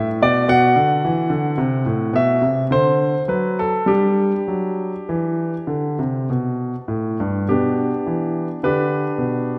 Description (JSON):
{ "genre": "classical, baroque-style suite movement for grand piano", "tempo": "49-56 BPM", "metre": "3/4", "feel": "rubato", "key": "G major", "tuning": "A4 = 443 Hz", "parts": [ { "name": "clear grand piano", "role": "solo", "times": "0.0-9.6 s", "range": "G2 to F#5", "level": "-20 LUFS", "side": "equal", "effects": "none" } ], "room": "wet concert hall reverb, RT60 2.1 s", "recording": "none", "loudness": "-20 LUFS", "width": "mono", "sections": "0.0-7.5 A section; 7.5-9.6 B section", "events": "none", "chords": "0.5 Bm; 1.6 C; 2.7 D; 3.9 G5; 7.5 G/B", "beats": "| 0.47 1.56 2.70 | 3.88 5.09 6.30 | 7.47 8.61" }